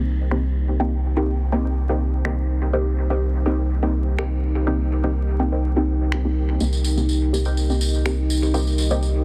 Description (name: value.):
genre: dub techno.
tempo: 124 BPM.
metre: 4/4.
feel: straight.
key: C minor.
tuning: A4 = 440 Hz.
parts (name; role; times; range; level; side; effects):
dark analog pad; sustained chords; 0.1-9.2 s; Eb4 to Eb5; -31 LUFS; equal; chorus.
filtered dub chord stab; stabs; 0.0-9.0 s; Bb3 to G4; -28 LUFS; equal; phaser, dub echo.
soft dub sub bass; bass; 0.0-9.2 s; C2; -23 LUFS; equal; none.
electronic finger snaps; drums; 0.3-8.2 s; none; -37 LUFS; equal; low-pass filter on hats, soft clipping on snare, low-pass filter on snare, dub echo.
filtered dub chord stab; riff; 1.7-7.6 s; Bb4 to G5; -42 LUFS; equal; phaser, lush chorus, dub echo.
tambourine; percussion; 6.6-9.1 s; none; -34 LUFS; equal; none.
room: little or no reverb.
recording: dense, heavily limited modern master, vinyl crackle.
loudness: -22 LUFS.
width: mono.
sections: 0.0-9.2 A section.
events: filter sweep on drum 0.0-9.2.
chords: 0.0 Cm7.